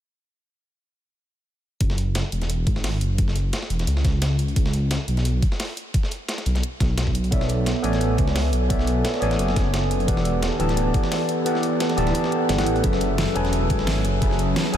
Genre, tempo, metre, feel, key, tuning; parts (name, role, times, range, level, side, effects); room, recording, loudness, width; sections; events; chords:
liquid drum and bass; 174 BPM; 4/4; swing 53% on 16ths; F# minor; A4 = 440 Hz
dark detuned saw bass; bass; 1.8-14.8 s; D1 to C#2; -23 LUFS; equal
dusty soul sampler-style drum kit; drums; 1.8-14.8 s; hi-hat, snare drum; -31 LUFS; equal; overdrive, high-pass filter on hats, high-pass filter on snare
electronic kick drum; drums; 1.8-14.3 s; -23 LUFS; equal; overdrive
pop drum kit; drums; 1.8-14.8 s; hi-hat, snare drum; -30 LUFS; equal; overdrive
overdriven tine electric piano; accompaniment; 7.3-14.8 s; E3 to A5; -22 LUFS; equal; phaser, analog delay
light reverb; -20 LUFS; side -10 dB against mid
1.8-14.8 A section
kick drops out 11.5-12.8
1.8 F#sus2; 4.6 Bsus2; 7.2 Bm11; 10.1 Em11; 12.8 F#m11